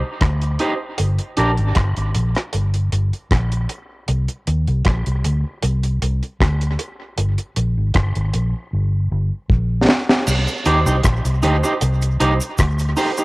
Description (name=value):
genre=dub reggae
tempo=78 BPM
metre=4/4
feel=straight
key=C minor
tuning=A4 = 439 Hz
part: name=vintage muted fingered electric bass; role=bass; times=0.2-12.9 s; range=G1 to Eb2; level=-18 LUFS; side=equal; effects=none
part: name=deep reggae drum kit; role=drums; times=0.2-13.2 s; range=crash cymbal, hi-hat, kick drum, rim click, snare drum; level=-20 LUFS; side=equal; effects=cassette tape
part: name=electric guitar at the edge of break-up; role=accompaniment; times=0.6-1.5, 10.7-13.2 s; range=D4 to C5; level=-21 LUFS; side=right 2 dB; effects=vibrato effect, high-pass filter, cassette tape, tape echo
part: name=cabasa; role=percussion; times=10.3-13.2 s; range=none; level=-33 LUFS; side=right 2 dB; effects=tape echo
room=light reverb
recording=home recording on cassette, faint mains hum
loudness=-17 LUFS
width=side -22 dB against mid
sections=0.0-10.3 A section; 10.3-13.2 B section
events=drum fill 8.7-10.3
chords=0.0 Cm; 1.0 Gm; 4.1 N.C.; 7.2 Gm; 10.3 Cm